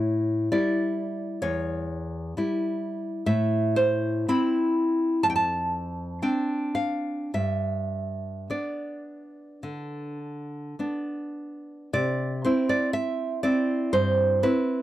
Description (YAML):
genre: romantic piece for solo classical guitar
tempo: 49-68 BPM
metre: 4/4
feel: rubato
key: C major from 3.3 s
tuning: A4 = 440 Hz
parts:
  - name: nylon-string guitar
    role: solo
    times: 0.0-14.8 s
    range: E2 to B5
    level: -24 LUFS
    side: equal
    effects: none
room: light reverb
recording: dry, close 1970s-style studio recording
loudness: -24 LUFS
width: side -14 dB against mid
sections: 0.0-11.9 A section; 11.9-14.8 B section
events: none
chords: 0.0 A7; 3.3 Am; 5.2 Dm7/F; 7.3 G; 11.9 C